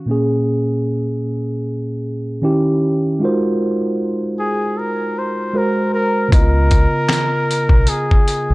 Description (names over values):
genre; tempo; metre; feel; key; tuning
lo-fi hip hop; 77 BPM; 4/4; swing 56% on 16ths; unclear; A4 = 440 Hz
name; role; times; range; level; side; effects
mellow tine electric piano; accompaniment; 0.0-8.5 s; Bb2 to Eb5; -18 LUFS; right 1 dB; cassette tape
trumpet with bucket mute; melody; 4.4-8.5 s; Ab4 to C5; -20 LUFS; left 1 dB; none
deep dub fingered electric bass; bass; 6.3-8.5 s; Cb2 to Db2; -15 LUFS; equal; none
dusty soul sampler-style drum kit; drums; 6.3-8.5 s; finger snaps, hi-hat, kick drum, snare drum; -14 LUFS; equal; none
room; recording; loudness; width
moderate spring reverb, RT60 2.3 s; dark, warm production; -15 LUFS; side -22 dB against mid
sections
0.0-6.3 A section; 6.3-8.5 B section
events
none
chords
0.1 Bbm7; 2.4 Eb7b9; 3.2 Ab13; 5.5 Ab9; 6.3 Db9